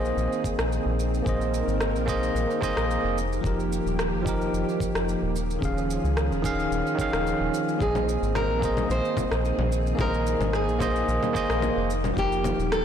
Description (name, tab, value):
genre	sunset chillout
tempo	110 BPM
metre	4/4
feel	swing 53% on 16ths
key	unclear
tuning	A4 = 440 Hz
part	barky tine electric piano	accompaniment	0.0-12.8 s	Eb3 to F5	-27 LUFS	right 1 dB	auto-pan, ping-pong delay
part	soft string machine	sustained chords	0.0-12.8 s	Eb3 to Bb4	-32 LUFS	equal	ensemble chorus
part	round analog bass	bass	0.0-12.8 s	Eb1 to Db2	-28 LUFS	equal	tube saturation
part	electronic shaker, rim click and congas	drums	0.1-12.8 s	none	-32 LUFS	left 1 dB	overdrive
part	electronic kick drum	drums	0.4-12.3 s	none	-31 LUFS	equal	overdrive
part	nylon-string guitar	melody	7.8-12.8 s	G4 to C5	-29 LUFS	equal	tape echo
room	moderate lush hall reverb, RT60 2.1 s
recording	blown-out, overdriven recording, overdrive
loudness	-23 LUFS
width	side -8 dB against mid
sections	0.0-12.8 A section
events	none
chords	0.0 Bb9sus4; 3.2 F9sus4; 5.4 Eb9sus4; 7.8 Bb9sus4; 11.9 F9sus4